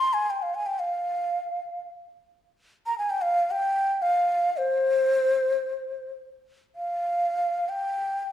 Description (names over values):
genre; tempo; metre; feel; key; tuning
Persian modal ensemble; free time; none; none; unclear; A4 = 442 Hz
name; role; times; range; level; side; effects
breathy mellow ney; solo; 0.0-8.3 s; C5 to C6; -24 LUFS; equal; none
room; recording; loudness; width
moderate recital hall reverb, RT60 1.2 s; dark, warm production; -23 LUFS; side -11 dB against mid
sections
0.0-6.4 A section; 6.4-8.3 A section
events
none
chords
none